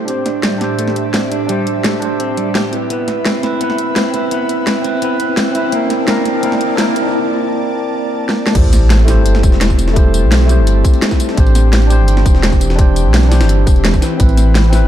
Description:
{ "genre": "liquid drum and bass", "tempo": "170 BPM", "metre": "4/4", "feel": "straight", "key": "A minor", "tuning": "A4 = 440 Hz", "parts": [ { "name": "tine electric piano", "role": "accompaniment", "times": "0.0-14.9 s", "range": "A3 to C5", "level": "-18 LUFS", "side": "equal", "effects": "medium stereo tremolo, ping-pong delay" }, { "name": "airy breathy pad", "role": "sustained chords", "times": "0.0-14.9 s", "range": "A2 to A5", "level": "-22 LUFS", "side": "left 1 dB", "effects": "chorus, sidechain pumping" }, { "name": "riser and sub drop", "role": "sound effects", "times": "1.4-10.0 s", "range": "none", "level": "-24 LUFS", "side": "equal", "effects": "none" }, { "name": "clean electric guitar", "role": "arpeggios", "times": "0.1-6.9 s", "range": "G3 to G4", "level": "-22 LUFS", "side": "right 2 dB", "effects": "low-pass filter, ping-pong delay" }, { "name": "drum and bass drum kit", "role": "drums", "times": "0.1-14.8 s", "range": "crash cymbal, hi-hat, snare drum, tambourine", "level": "-20 LUFS", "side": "equal", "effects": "overdrive" }, { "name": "warm sub bass", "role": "bass", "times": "8.6-14.9 s", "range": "E1 to B1", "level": "-11 LUFS", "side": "equal", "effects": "none" }, { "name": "electronic kick drum", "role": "drums", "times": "8.6-14.3 s", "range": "none", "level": "-11 LUFS", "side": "equal", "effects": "overdrive" }, { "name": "jungle sampler-style drum kit", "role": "drums", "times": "8.6-14.8 s", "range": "hi-hat, snare drum", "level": "-24 LUFS", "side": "left 1 dB", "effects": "high-pass filter on hats, high-pass filter on snare, high-pass filter on room" } ], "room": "light reverb", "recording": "dark, warm production", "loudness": "-11 LUFS", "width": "side -11 dB against mid", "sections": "0.0-8.6 A section; 8.6-14.9 B section", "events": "build-up 0.0-8.6; break 7.1-8.6; drum fill 8.3; drop 8.6-14.9; impact 8.6-10.0", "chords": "0.1 D9sus4/A; 2.7 Cmaj7; 5.7 Bbmaj7; 8.6 Am7; 11.4 D9sus4; 14.0 Cmaj7", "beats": "| 0.08 0.43 0.79 1.14 | 1.49 1.84 2.20 2.55 | 2.90 3.26 3.61 3.96 | 4.32 4.67 5.02 5.37 | 5.73 6.08 6.43 6.79 | 7.14 7.49 7.84 8.20 | 8.55 8.90 9.26 9.61 | 9.96 10.31 10.67 11.02 | 11.37 11.73 12.08 12.43 | 12.79 13.14 13.49 13.85 | 14.20 14.55" }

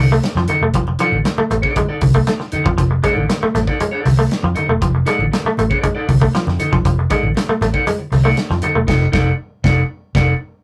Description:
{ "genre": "funk", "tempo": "118 BPM", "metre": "4/4", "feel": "straight", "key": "F mixolydian", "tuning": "A4 = 441 Hz", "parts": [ { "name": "semi-hollow electric guitar", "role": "accompaniment", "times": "0.0-10.3 s", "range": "Eb4 to Eb5", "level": "-23 LUFS", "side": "equal", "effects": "none" }, { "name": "vintage muted fingered electric bass", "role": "bass", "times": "0.0-10.3 s", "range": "E1 to F2", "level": "-19 LUFS", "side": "equal", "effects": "none" }, { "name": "semi-hollow electric guitar", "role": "riff", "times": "0.1-8.8 s", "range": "F3 to A3", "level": "-22 LUFS", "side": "equal", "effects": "none" }, { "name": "warm soul drum kit", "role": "drums", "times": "0.2-10.3 s", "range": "crash cymbal, hi-hat, kick drum, snare drum", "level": "-23 LUFS", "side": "equal", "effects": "none" }, { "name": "congas", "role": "percussion", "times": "0.5-8.7 s", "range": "none", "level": "-27 LUFS", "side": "equal", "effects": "none" } ], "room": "wet booth ambience, RT60 0.2 s", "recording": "rough rehearsal-room recording", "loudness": "-16 LUFS", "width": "mono", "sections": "0.0-10.6 A section", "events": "band accent 8.9-10.6", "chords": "0.0 F6", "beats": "0.23 | 0.74 1.25 1.76 2.27 | 2.78 3.29 3.80 4.31 | 4.82 5.33 5.84 6.34 | 6.85 7.36 7.87 8.38 | 8.88 9.39 9.90" }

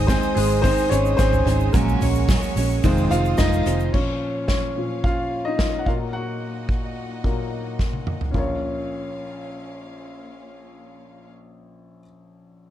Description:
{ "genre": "piano-driven pop", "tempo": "109 BPM", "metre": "4/4", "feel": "straight", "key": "Bb minor", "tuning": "A4 = 439 Hz", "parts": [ { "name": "warm baby grand piano", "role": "accompaniment", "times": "0.0-12.7 s", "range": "Bb1 to Gb5", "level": "-25 LUFS", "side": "left 2 dB", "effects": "none" }, { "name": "rich studio string section", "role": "sustained chords", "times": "0.0-11.3 s", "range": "Bb3 to Eb6", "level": "-36 LUFS", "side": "right 2 dB", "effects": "none" }, { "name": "picked steel-string acoustic guitar", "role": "riff", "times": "0.0-3.9 s", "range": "F2 to Ab4", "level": "-24 LUFS", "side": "right 8 dB", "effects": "none" }, { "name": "vintage muted fingered electric bass", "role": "bass", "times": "0.0-3.9 s", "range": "F1 to Bb1", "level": "-22 LUFS", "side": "equal", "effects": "none" }, { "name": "unplugged drum kit", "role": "drums", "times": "0.1-8.5 s", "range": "crash cymbal, hi-hat, kick drum, snare drum, toms", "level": "-23 LUFS", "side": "equal", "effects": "none" }, { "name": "tube shaker", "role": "percussion", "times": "0.1-3.9 s", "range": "none", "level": "-44 LUFS", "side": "right 12 dB", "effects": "none" } ], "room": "light reverb", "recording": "dark, warm production", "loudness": "-19 LUFS", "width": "side -11 dB against mid", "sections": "0.0-3.9 A section; 3.9-8.3 B section; 8.3-10.6 C section", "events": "grand piano solo 0.0-3.9, 3.9-8.3; drum fill 7.8-8.3", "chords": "0.0 Ab; 1.7 Gbadd9/Bb; 2.8 Fm7; 3.9 Bbm; 5.9 Ebm/Bb; 8.3 Bbm", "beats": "0.09 0.64 1.19 | 1.74 2.29 2.84 3.39 | 3.94 4.49 5.04 5.59 | 6.14 6.69 7.24 7.79 | 8.35 8.90 9.45 10.00" }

